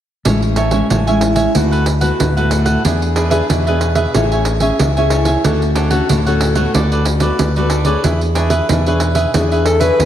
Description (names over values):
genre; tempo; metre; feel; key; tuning
samba and choro; 92 BPM; 4/4; straight; A major; A4 = 440 Hz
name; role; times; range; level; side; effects
cavaquinho; accompaniment; 0.2-10.1 s; D4 to G#5; -20 LUFS; right 2 dB; none
nylon-string guitar; accompaniment; 0.2-10.1 s; A2 to C#5; -19 LUFS; left 2 dB; wide subtle chorus
fingered electric bass; bass; 0.3-10.1 s; A1 to E2; -16 LUFS; equal; none
pandeiro; percussion; 0.3-10.1 s; none; -19 LUFS; right 4 dB; none
breathy alto saxophone; melody; 9.7-10.1 s; A4 to B4; -13 LUFS; left 2 dB; none
room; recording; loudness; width
moderate plate reverb, RT60 2.5 s; dreamy mix soaked in reverb; -12 LUFS; side -10 dB against mid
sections
0.3-10.1 A section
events
none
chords
0.3 Amaj7; 1.6 D6; 2.9 E7; 4.2 Amaj7; 5.4 Dmaj7; 6.7 Bm7/D; 8.0 E6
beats
| 0.26 0.90 1.55 2.20 | 2.85 3.50 4.15 4.80 | 5.45 6.10 6.75 7.40 | 8.04 8.70 9.34 9.99